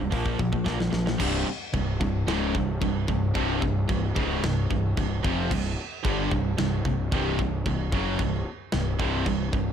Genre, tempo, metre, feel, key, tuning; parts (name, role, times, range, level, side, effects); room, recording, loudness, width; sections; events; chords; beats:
heavy metal; 112 BPM; 4/4; straight; A4 = 441 Hz
distorted electric guitar; riff; 0.0-9.7 s; C2 to Bb3; -31 LUFS; left 9 dB; distortion
tight distorted guitar; riff; 0.0-9.7 s; C2 to Bb3; -30 LUFS; right 9 dB; distortion
fuzz picked electric bass; bass; 0.0-9.7 s; C1 to Bb1; -30 LUFS; equal; overdrive
tight metal drum kit; drums; 0.1-9.7 s; china cymbal, crash cymbal, hi-hat, kick drum, snare drum; -30 LUFS; equal
sludgy distorted guitar; riff; 1.2-9.7 s; C2 to G3; -32 LUFS; equal; overdrive
little or no reverb; dark, warm production; -24 LUFS; side -8 dB against mid
0.0-1.2 A section; 1.2-9.7 B section
drum fill 0.7-1.2; half time 1.2-9.7
0.1 Bb5; 1.2 C5
0.12 0.66 | 1.20 1.74 2.28 2.82 | 3.36 3.90 4.43 4.97 | 5.51 6.04 6.58 7.12 | 7.66 8.19 8.73 9.26